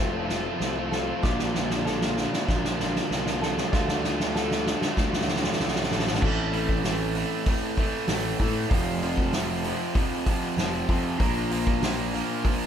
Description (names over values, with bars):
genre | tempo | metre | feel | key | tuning
post-rock | 96 BPM | 4/4 | straight | unclear | A4 = 439 Hz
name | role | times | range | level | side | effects
pedal steel guitar | sustained chords | 0.0-12.7 s | Bb3 to D6 | -39 LUFS | equal | none
clean electric guitar | arpeggios | 0.0-6.2 s | F2 to F4 | -36 LUFS | left 1 dB | none
open-back banjo | arpeggios | 0.0-6.2 s | F4 to A4 | -36 LUFS | right 1 dB | none
distorted electric guitar | riff | 0.0-12.7 s | F2 to Bb3 | -31 LUFS | right 6 dB | overdrive
raw garage guitar | riff | 0.0-12.7 s | F2 to F4 | -31 LUFS | left 5 dB | overdrive
fuzz picked electric bass | bass | 0.0-12.2 s | F1 to A2 | -31 LUFS | equal | overdrive
soft-mallet drum kit | drums | 0.3-12.6 s | crash cymbal, hi-hat, kick drum, snare drum | -27 LUFS | equal | none
room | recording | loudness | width
moderate large studio reverb, RT60 1.1 s | band playing live in one room | -23 LUFS | side -8 dB against mid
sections
0.0-6.2 A section; 6.2-12.7 B section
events
build-up 0.0-6.2; drum fill 0.0-6.2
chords
0.0 F; 1.2 Bb; 3.7 Dm; 6.2 Am; 8.7 F; 11.2 Bb